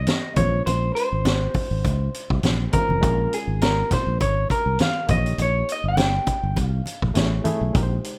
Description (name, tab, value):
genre	lush 1970s-style soul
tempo	102 BPM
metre	4/4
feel	swing 54% on 16ths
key	unclear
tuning	A4 = 440 Hz
part	electric guitar through a small old amp	melody	0.0-7.0 s	Ab4 to G5	-27 LUFS	equal	none
part	barky reed electric piano	accompaniment	0.0-8.2 s	Ab3 to E5	-35 LUFS	equal	fast tremolo
part	fingered electric bass	bass	0.0-8.0 s	F1 to Db2	-26 LUFS	equal	tube saturation
part	vintage drum kit	drums	0.1-8.2 s	hi-hat, kick drum, snare drum	-27 LUFS	equal	none
part	congas	percussion	0.1-7.9 s	none	-30 LUFS	equal	none
room	light reverb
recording	rough home demo mix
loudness	-22 LUFS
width	mono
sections	0.0-8.2 A section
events	none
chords	0.4 Dbmaj7; 3.0 Bbm7; 5.1 Eb7; 7.2 Amaj7